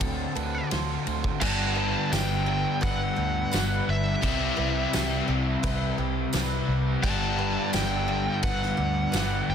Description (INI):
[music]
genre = rock, shoegaze and dream pop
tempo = 85 BPM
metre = 4/4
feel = straight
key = G major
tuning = A4 = 440 Hz
[part]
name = biting lead guitar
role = melody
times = 0.0-9.5 s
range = E5 to A5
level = -32 LUFS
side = right 1 dB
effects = overdrive, tape echo
[part]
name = picked twelve-string acoustic guitar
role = arpeggios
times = 0.0-9.5 s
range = G4 to F#5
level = -36 LUFS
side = equal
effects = wide subtle chorus, tape echo
[part]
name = biting overdriven guitar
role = riff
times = 0.0-9.5 s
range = G2 to A4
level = -33 LUFS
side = right 11 dB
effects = reverse reverb
[part]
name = crunchy overdriven guitar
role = riff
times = 0.0-9.5 s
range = G2 to A4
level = -30 LUFS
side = left 8 dB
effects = ensemble chorus
[part]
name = vintage muted fingered electric bass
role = bass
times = 0.0-9.5 s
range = G1 to D2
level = -30 LUFS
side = equal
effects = none
[part]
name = loose indie drum kit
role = drums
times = 0.0-9.3 s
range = crash cymbal, kick drum, ride cymbal, snare drum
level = -31 LUFS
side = equal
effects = none
[part]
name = overdriven electric guitar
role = riff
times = 1.4-9.5 s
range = G2 to C4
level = -34 LUFS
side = right 1 dB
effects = harmonic tremolo
[part]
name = tambourine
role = percussion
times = 2.1-9.3 s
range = none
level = -39 LUFS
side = right 7 dB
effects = none
[sound]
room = small room ambience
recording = dense, heavily limited modern master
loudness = -24 LUFS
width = side -8 dB against mid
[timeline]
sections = 0.0-1.4 A section; 1.4-9.5 B section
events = none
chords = 0.0 D7sus4; 1.4 Gmaj7; 4.2 Cmaj7; 7.0 Gmaj7